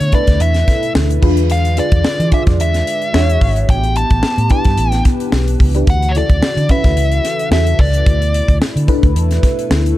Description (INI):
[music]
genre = polished 1980s jazz-funk pop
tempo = 110 BPM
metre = 4/4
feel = swing 54% on 16ths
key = unclear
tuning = A4 = 440 Hz
[part]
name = nasal lead guitar with a parked wah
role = melody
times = 0.0-8.6 s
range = C#5 to A5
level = -20 LUFS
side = equal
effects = overdrive
[part]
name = chorused pulse-width pad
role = sustained chords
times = 0.0-10.0 s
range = B2 to C#5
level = -25 LUFS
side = equal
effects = none
[part]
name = vintage muted fingered electric bass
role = bass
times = 0.0-9.9 s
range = G#1 to E3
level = -15 LUFS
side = equal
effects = none
[part]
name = tight funk drum kit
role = drums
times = 0.0-10.0 s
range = crash cymbal, hi-hat, kick drum, snare drum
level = -15 LUFS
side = equal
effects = none
[part]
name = FM electric piano with soft pad layer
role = accompaniment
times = 0.1-10.0 s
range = C#3 to D5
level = -21 LUFS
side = left 2 dB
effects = phaser, wide subtle chorus
[sound]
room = small room ambience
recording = dark, warm production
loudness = -11 LUFS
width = side -15 dB against mid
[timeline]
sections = 0.0-10.0 A section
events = none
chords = 0.0 Bm11; 1.2 E7b9; 3.1 E13; 3.7 A9sus4; 5.9 Dmaj7; 8.1 Asus24